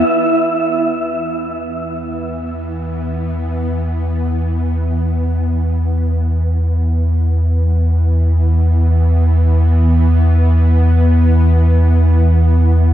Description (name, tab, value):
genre	ambient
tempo	free time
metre	none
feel	none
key	unclear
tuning	A4 = 439 Hz
part	warm sub bass	bass	0.0-12.9 s	E2	-13 LUFS	equal	none
part	bowed-like drone	drone	0.0-12.9 s	E3 to B3	-21 LUFS	equal	built-in reverb
room	moderate huge ambient reverb, RT60 7.9 s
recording	dark, warm production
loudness	-13 LUFS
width	side -12 dB against mid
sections	0.1-12.9 A section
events	fade-in on sub bass 0.1-12.9; fade-in on synth drone 0.1-12.9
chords	0.1 E5